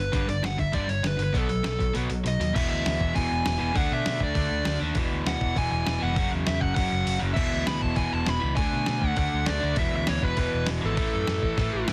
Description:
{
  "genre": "punk rock",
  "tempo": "199 BPM",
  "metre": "4/4",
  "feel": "straight",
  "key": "unclear",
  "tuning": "A4 = 440 Hz",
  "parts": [
    { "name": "dark smooth lead guitar", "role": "melody", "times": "0.0-11.9 s", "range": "A4 to B5", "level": "-32 LUFS", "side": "equal", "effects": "overdrive, tape echo" },
    { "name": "distorted electric guitar", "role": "riff", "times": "0.0-11.9 s", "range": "E2 to D4", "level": "-34 LUFS", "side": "equal", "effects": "distortion" },
    { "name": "overdriven electric guitar", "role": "riff", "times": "0.0-11.9 s", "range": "E2 to D4", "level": "-34 LUFS", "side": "equal", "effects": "none" },
    { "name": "picked electric bass", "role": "bass", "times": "0.0-11.9 s", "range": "E1 to B2", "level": "-32 LUFS", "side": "equal", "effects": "none" },
    { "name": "dusty soul sampler-style drum kit", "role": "drums", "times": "0.1-11.9 s", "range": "crash cymbal, hi-hat, kick drum, snare drum", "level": "-32 LUFS", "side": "equal", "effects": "overdrive" }
  ],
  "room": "little or no reverb",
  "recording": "dense, heavily limited modern master",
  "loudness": "-26 LUFS",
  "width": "mono",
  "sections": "0.0-2.6 A section; 2.6-11.9 B section",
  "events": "kick and snare drop out 1.9-2.6, 7.1; drum fill 11.6-11.9",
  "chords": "0.0 G; 1.3 B7; 2.6 E; 3.8 D5; 5.0 E; 6.2 F#5; 7.4 E5; 8.6 D; 9.8 E5; 11.0 A5",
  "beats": "| 0.13 0.44 0.74 1.04 | 1.34 1.65 1.95 2.25 | 2.55 2.85 3.16 3.46 | 3.76 4.06 4.36 4.66 | 4.96 5.26 5.57 5.87 | 6.17 6.47 6.77 7.07 | 7.37 7.67 7.97 8.27 | 8.57 8.87 9.18 9.47 | 9.78 10.08 10.38 10.68 | 10.98 11.28 11.58 11.88"
}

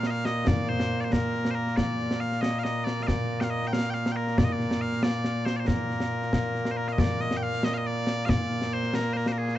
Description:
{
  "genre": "scottish traditional, Scottish pipe music",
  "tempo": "92 BPM (dotted quarters)",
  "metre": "6/8",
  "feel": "straight",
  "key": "Bb major",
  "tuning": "A4 = 441 Hz",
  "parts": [
    { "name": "loud bright bagpipes", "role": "melody", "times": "0.0-9.6 s", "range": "Bb2 to G5", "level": "-27 LUFS", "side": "equal", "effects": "none" },
    { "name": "concert snare drum and concert bass drum", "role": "drums", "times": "0.0-9.5 s", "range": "none", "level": "-28 LUFS", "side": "equal", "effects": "none" }
  ],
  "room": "light reverb",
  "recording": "dark, warm production, nothing above 8.0 kHz",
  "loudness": "-25 LUFS",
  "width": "side -13 dB against mid",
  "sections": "0.0-7.0 A section; 7.0-9.6 A section",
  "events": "none",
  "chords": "none",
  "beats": "| 0.46 1.11 | 1.77 2.42 | 3.07 3.72 | 4.38 5.03 | 5.68 6.33 | 6.99 7.64 | 8.29 8.94"
}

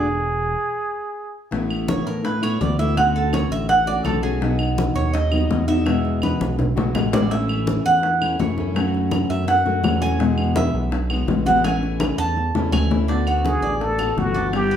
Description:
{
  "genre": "latin, Cuban son and guajira",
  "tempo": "166 BPM",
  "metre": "4/4",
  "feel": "straight",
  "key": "A major",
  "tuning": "A4 = 440 Hz",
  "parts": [
    { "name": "trumpet with plunger mute", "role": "melody", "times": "0.0-1.4, 13.5-14.8 s", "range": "F#4 to A4", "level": "-23 LUFS", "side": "equal", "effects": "plate reverb" },
    { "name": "fingerpicked steel-string acoustic guitar", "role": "accompaniment", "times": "0.0-14.8 s", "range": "B2 to F#4", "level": "-24 LUFS", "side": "left 3 dB", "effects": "none" },
    { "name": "Cuban tres", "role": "arpeggios", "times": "0.0-14.8 s", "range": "D4 to A5", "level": "-23 LUFS", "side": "right 2 dB", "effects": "none" },
    { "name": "smooth synth bass", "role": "bass", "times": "0.0-14.8 s", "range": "E1 to A2", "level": "-24 LUFS", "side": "right 1 dB", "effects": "none" },
    { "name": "bongos", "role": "percussion", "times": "1.5-14.8 s", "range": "none", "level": "-27 LUFS", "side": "left 4 dB", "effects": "none" },
    { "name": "congas", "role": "percussion", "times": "1.5-14.8 s", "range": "none", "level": "-28 LUFS", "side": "left 2 dB", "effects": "none" },
    { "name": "claves", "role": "percussion", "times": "1.7-14.7 s", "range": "none", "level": "-33 LUFS", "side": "right 1 dB", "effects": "none" }
  ],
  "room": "wet large studio reverb, RT60 0.9 s",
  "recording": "heard from further back in the room",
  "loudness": "-18 LUFS",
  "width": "side -9 dB against mid",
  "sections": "0.0-1.5 A section; 1.5-13.1 B section; 13.1-14.8 C section",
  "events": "stop 0.1-1.5; Cuban tres solo 1.5-13.1; drum fill 6.2-7.3, 12.0-13.1",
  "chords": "0.1 E; 1.5 Asus2; 3.0 Dmaj7; 4.4 B; 5.9 Eadd9; 7.3 A; 8.8 F#m; 10.2 Eadd9; 11.6 A; 13.1 D6",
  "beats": "| 0.07 0.43 0.79 1.16 | 1.52 1.88 2.24 2.61 | 2.97 3.33 3.69 4.05 | 4.42 4.78 5.14 5.50 | 5.87 6.23 6.59 6.95 | 7.31 7.68 8.04 8.40 | 8.76 9.12 9.48 9.85 | 10.21 10.57 10.93 11.29 | 11.65 12.01 12.37 12.73 | 13.09 13.45 13.81 14.17 | 14.53"
}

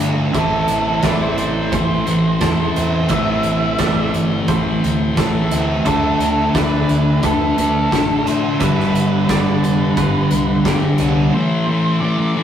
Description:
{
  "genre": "rock, shoegaze and dream pop",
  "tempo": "87 BPM",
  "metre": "4/4",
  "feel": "straight",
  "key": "A minor",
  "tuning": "A4 = 441 Hz",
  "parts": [
    { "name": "direct-recorded clean electric guitar", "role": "arpeggios", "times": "0.0-11.3 s", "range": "G4 to E5", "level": "-29 LUFS", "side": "right 4 dB", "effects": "none" },
    { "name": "biting overdriven guitar", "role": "riff", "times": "0.0-11.3 s", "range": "G2 to F4", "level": "-22 LUFS", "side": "right 4 dB", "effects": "none" },
    { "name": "thick fuzz guitar", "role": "riff", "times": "0.0-12.4 s", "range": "G2 to D4", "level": "-17 LUFS", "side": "left 2 dB", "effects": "distortion" },
    { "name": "vintage muted fingered electric bass", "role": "bass", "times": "0.0-11.3 s", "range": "E1 to A2", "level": "-26 LUFS", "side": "right 1 dB", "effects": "none" },
    { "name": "big rock drum kit", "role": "drums", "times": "0.0-11.1 s", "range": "hi-hat, kick drum, snare drum", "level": "-22 LUFS", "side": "equal", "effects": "none" },
    { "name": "octave-fuzz lead guitar", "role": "melody", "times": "0.4-12.4 s", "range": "A4 to E5", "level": "-23 LUFS", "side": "right 2 dB", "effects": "distortion, analog delay" }
  ],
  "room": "wet stone room reverb, RT60 1.0 s",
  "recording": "rough rehearsal-room recording",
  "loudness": "-14 LUFS",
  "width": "side -9 dB against mid",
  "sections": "0.0-11.3 A section; 11.3-12.4 B section",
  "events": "none",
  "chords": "0.4 Am; 5.9 Dm; 8.6 G; 11.3 Am",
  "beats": "| 0.35 1.04 1.73 2.42 | 3.10 3.79 4.48 5.17 | 5.85 6.54 7.23 7.91 | 8.60 9.29 9.97 10.65 | 11.34 12.02"
}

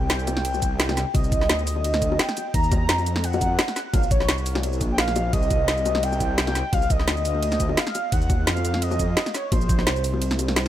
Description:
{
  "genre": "liquid drum and bass",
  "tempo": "172 BPM",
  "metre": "4/4",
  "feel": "swing 54% on 16ths",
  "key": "unclear",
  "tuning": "A4 = 440 Hz",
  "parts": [
    { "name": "warm velvety synth lead", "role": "melody", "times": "0.0-10.5 s", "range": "C5 to Bb5", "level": "-27 LUFS", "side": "equal", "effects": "chorus, analog delay" },
    { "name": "swelling detuned saw bass", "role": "bass", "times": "0.0-10.7 s", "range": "Bb1 to F2", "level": "-25 LUFS", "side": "equal", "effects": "none" },
    { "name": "drum and bass drum kit", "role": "drums", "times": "0.1-10.7 s", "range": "hi-hat, ride cymbal, shaker, snare drum", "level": "-26 LUFS", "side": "equal", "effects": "overdrive" },
    { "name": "bongos", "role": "percussion", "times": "0.3-10.5 s", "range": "none", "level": "-33 LUFS", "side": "left 6 dB", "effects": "dub echo" },
    { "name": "electronic kick drum", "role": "drums", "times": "0.6-9.8 s", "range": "none", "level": "-23 LUFS", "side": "equal", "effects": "overdrive" }
  ],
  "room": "light reverb, digital ambience",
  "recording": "echo-heavy mix",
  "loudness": "-20 LUFS",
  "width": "side -12 dB against mid",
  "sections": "0.0-10.7 A section",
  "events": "kick drops out 10.2-10.7",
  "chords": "0.0 Cmadd9; 2.5 Ebmadd9; 3.9 Bbmadd9; 5.3 Cmadd9; 8.1 Ebmadd9; 9.5 Bbsus2",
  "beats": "0.10 0.45 0.80 | 1.15 1.50 1.84 2.19 | 2.54 2.89 3.24 3.59 | 3.94 4.29 4.63 4.98 | 5.33 5.68 6.03 6.38 | 6.73 7.08 7.42 7.77 | 8.12 8.47 8.82 9.17 | 9.52 9.87 10.22 10.56"
}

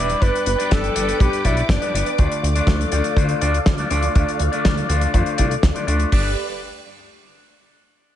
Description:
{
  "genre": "italo disco",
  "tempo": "122 BPM",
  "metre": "4/4",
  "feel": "straight",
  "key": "G mixolydian",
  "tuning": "A4 = 441 Hz",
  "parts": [
    { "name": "breathy alto saxophone", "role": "melody", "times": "0.0-2.0 s", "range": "D4 to D5", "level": "-24 LUFS", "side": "equal", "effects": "digital delay" },
    { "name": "phased string machine", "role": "sustained chords", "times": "0.0-6.4 s", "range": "G4 to D6", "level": "-26 LUFS", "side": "left 1 dB", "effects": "ensemble chorus, phaser" },
    { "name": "electric guitar with an envelope filter", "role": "stabs", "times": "0.0-6.3 s", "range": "G2 to D5", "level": "-24 LUFS", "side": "left 3 dB", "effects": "spring reverb, low-pass filter, tape echo" },
    { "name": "chorused synth bass", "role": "bass", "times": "0.0-6.4 s", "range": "E1 to F2", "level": "-22 LUFS", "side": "equal", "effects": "none" },
    { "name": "damped 70s drum kit", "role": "drums", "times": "0.1-6.1 s", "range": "hi-hat, snare drum", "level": "-25 LUFS", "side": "left 1 dB", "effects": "studio reverb, gated reverb" },
    { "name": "damped 70s drum kit", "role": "drums", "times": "0.2-6.2 s", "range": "hi-hat, kick drum", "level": "-18 LUFS", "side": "equal", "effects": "studio reverb" }
  ],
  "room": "light reverb, studio ambience",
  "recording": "nothing above 11.0 kHz",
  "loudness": "-16 LUFS",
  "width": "side -11 dB against mid",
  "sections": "0.0-6.1 A section; 6.1-8.1 B section",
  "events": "filter sweep on string machine 0.0-6.1",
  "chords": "0.2 G; 2.2 Dm; 6.1 G",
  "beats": "| 0.22 0.71 1.20 1.70 | 2.19 2.68 3.17 3.66 | 4.16 4.65 5.14 5.63 | 6.12"
}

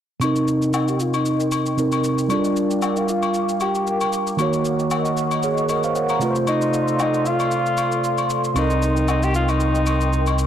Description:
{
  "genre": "amapiano",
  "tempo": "115 BPM",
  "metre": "4/4",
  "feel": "swing 55% on 16ths",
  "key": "C dorian",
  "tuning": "A4 = 440 Hz",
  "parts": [
    { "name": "breathy alto saxophone", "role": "melody", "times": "0.2-10.3 s", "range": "D4 to G4", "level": "-23 LUFS", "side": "left 1 dB", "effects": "low-pass filter, ping-pong delay" },
    { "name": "bell-like tine electric piano", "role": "accompaniment", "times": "0.2-10.5 s", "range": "C3 to Bb5", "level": "-22 LUFS", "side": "right 2 dB", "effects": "low-pass filter" },
    { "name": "airy breathy pad", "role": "sustained chords", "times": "0.7-10.5 s", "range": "A4 to D6", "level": "-27 LUFS", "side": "left 1 dB", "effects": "chorus, low-pass filter" },
    { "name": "shaker", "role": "drums", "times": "0.2-10.5 s", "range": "none", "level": "-35 LUFS", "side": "right 1 dB", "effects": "vintage 12-bit sampler grit" },
    { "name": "agogo bells and woodblock", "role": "percussion", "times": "0.2-10.4 s", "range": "none", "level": "-28 LUFS", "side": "left 8 dB", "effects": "none" },
    { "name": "round analog bass", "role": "bass", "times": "8.6-10.5 s", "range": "C2", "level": "-22 LUFS", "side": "left 1 dB", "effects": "none" }
  ],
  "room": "light reverb, studio reverb",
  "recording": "blown-out, overdriven recording, overdrive",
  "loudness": "-18 LUFS",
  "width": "side -10 dB against mid",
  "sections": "0.2-10.5 A section",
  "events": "filter sweep 0.2-10.5",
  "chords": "0.2 Cm7; 2.3 Gm7; 4.4 Ebm7; 6.2 Dm7; 8.6 Cm7",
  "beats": "| 0.21 0.73 1.26 1.78 | 2.30 2.82 3.34 3.87 | 4.39 4.91 5.43 5.95 | 6.47 7.00 7.52 8.04 | 8.56 9.08 9.61 10.13"
}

